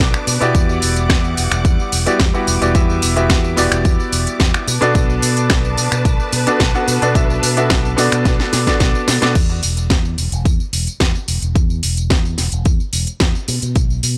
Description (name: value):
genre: nu-disco, nu disco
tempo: 109 BPM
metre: 4/4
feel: straight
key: unclear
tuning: A4 = 440 Hz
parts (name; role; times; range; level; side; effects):
- bright concert grand piano; accompaniment; 0.0-9.3 s; B3 to F#5; -21 LUFS; equal; vintage 12-bit sampler grit, sidechain pumping, analog delay
- clear studio string section; sustained chords; 0.0-9.3 s; G3 to D6; -28 LUFS; equal; sidechain pumping
- fingered electric bass with an envelope filter; bass; 0.0-14.2 s; E1 to B2; -22 LUFS; equal; tube saturation
- electronic kick drum; drums; 0.0-13.9 s; none; -18 LUFS; equal; none
- house drum kit; drums; 0.0-14.1 s; crash cymbal, finger snaps, hi-hat, snare drum, tambourine; -22 LUFS; equal; none
room: digital ambience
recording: dry, gritty hardware recording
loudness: -16 LUFS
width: mono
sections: 0.0-9.4 A section; 9.4-14.2 B section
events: drop 0.0-9.4; drum fill 8.3-9.4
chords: 0.0 Bm7; 0.5 Em9; 4.7 Bm7; 9.4 N.C.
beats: 0.00 | 0.55 1.10 1.65 2.20 | 2.75 3.30 3.85 4.40 | 4.95 5.50 6.05 6.60 | 7.15 7.70 8.25 8.80 | 9.36 9.91 10.46 11.01 | 11.56 12.11 12.66 13.21 | 13.76